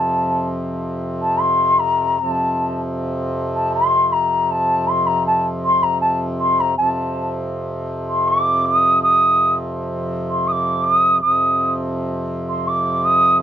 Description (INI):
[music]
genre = indian classical, Hindustani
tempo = 153-167 BPM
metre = 3/4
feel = straight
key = F raga khamaj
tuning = A4 = 443 Hz
[part]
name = mellow hollow bansuri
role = melody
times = 0.0-13.4 s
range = A5 to Eb6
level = -15 LUFS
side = equal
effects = none
[part]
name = hand-pumped harmonium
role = drone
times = 0.0-13.4 s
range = F2 to C3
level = -24 LUFS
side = equal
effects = none
[sound]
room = light reverb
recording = dry, close 1970s-style studio recording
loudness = -16 LUFS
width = side -10 dB against mid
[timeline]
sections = 0.0-6.8 A section; 6.8-13.4 B section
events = speeding up 0.0-13.4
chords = none